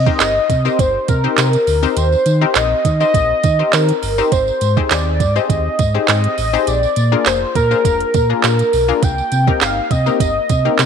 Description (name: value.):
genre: dance-pop.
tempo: 102 BPM.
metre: 4/4.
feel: straight.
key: C minor.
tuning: A4 = 440 Hz.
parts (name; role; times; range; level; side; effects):
warm velvety synth lead; melody; 0.0-10.9 s; Bb4 to G5; -17 LUFS; equal; chorus, slapback echo.
sub bass with octave; bass; 0.0-10.9 s; F1 to Eb3; -18 LUFS; right 1 dB; sidechain pumping.
analog pluck; accompaniment; 0.1-10.9 s; Bb3 to C5; -21 LUFS; left 14 dB; chorus, sidechain pumping.
smooth R&B drum kit; drums; 0.1-10.9 s; handclaps, hi-hat, kick drum, snare drum; -18 LUFS; right 5 dB; none.
tambourine; percussion; 0.2-10.9 s; none; -31 LUFS; right 16 dB; none.
room: light reverb.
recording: 1960s-style stereo with parts hard left and right.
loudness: -13 LUFS.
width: side -7 dB against mid.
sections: 0.0-10.9 A section.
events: none.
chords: 0.0 Cm7; 2.0 Eb6; 4.3 Abmaj7; 6.7 Bb7; 9.0 Cm7.